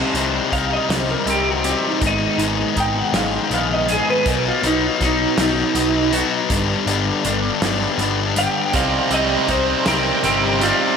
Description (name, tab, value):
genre	quiet-loud alternative rock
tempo	54 BPM (dotted quarters)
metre	6/8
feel	straight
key	C harmonic minor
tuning	A4 = 445 Hz
part	twangy electric guitar	arpeggios	0.0-11.0 s	G2 to Ab4	-27 LUFS	right 5 dB	lush chorus, slapback echo, digital delay
part	fuzz guitar	riff	0.0-11.0 s	G2 to Eb4	-20 LUFS	left 8 dB	distortion, slapback echo
part	overdriven picked electric bass	bass	0.1-10.7 s	G1 to C2	-26 LUFS	equal	none
part	loose indie drum kit	drums	0.1-10.8 s	hi-hat, kick drum, snare drum	-25 LUFS	right 1 dB	none
part	twelve-string electric guitar	melody	0.5-11.0 s	Eb4 to G5	-21 LUFS	right 1 dB	harmonic tremolo, digital delay
part	distorted electric guitar	riff	8.7-11.0 s	C3 to C4	-21 LUFS	right 9 dB	overdrive, slapback echo
room	wet lush hall reverb, RT60 1.9 s, studio reverb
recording	big arena sound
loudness	-16 LUFS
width	side -6 dB against mid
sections	0.0-11.0 A section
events	clean electric guitar solo 0.0-11.0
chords	0.0 Cm; 2.0 Abm; 4.3 B; 6.5 G; 8.7 Cm